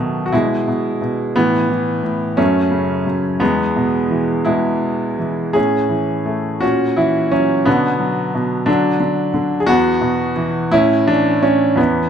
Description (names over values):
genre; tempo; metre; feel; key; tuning
classical, lyrical solo piano; 55-60 BPM (dotted quarters); 6/8; rubato; A major; A4 = 440 Hz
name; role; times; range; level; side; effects
clear grand piano; solo; 0.0-12.1 s; E2 to G#4; -14 LUFS; equal; none
room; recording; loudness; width
moderate recital hall reverb, RT60 1.5 s; none; -14 LUFS; side -8 dB against mid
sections
0.0-12.1 A section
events
none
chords
0.3 E/B; 1.4 Asus2; 2.4 F#m; 3.4 E; 5.5 A; 6.6 F#7/A#; 7.7 Bm; 8.7 D; 9.7 Esus2; 10.7 A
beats
0.33 | 1.35 2.37 | 3.40 4.46 | 5.55 6.62 | 7.67 8.67 | 9.68 10.72 | 11.78